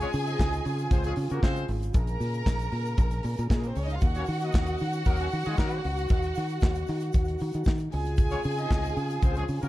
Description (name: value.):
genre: disco.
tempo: 116 BPM.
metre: 4/4.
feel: straight.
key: Eb dorian.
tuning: A4 = 444 Hz.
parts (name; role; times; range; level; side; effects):
rich studio violin section; second line; 0.0-9.7 s; Ab3 to Bb5; -34 LUFS; right 1 dB; tape echo.
mellow French horn section; sustained chords; 0.0-9.7 s; Db3 to Ab4; -36 LUFS; right 1 dB; stereo widening.
warm horn section; stabs; 0.0-9.7 s; Eb3 to Eb5; -37 LUFS; left 3 dB; none.
fingered electric bass; bass; 0.0-9.7 s; Ab1 to Eb3; -30 LUFS; equal; none.
modern studio drum kit; drums; 0.0-9.7 s; handclaps, hi-hat, kick drum, snare drum; -26 LUFS; equal; none.
egg shaker; percussion; 0.0-9.7 s; none; -56 LUFS; right 20 dB; none.
room: small room ambience.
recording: dark, warm production.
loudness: -25 LUFS.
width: side -16 dB against mid.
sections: 0.0-9.7 A section.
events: none.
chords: 0.0 Dbmaj7; 1.9 Bbm7; 4.0 Ebm7; 7.9 Dbmaj7.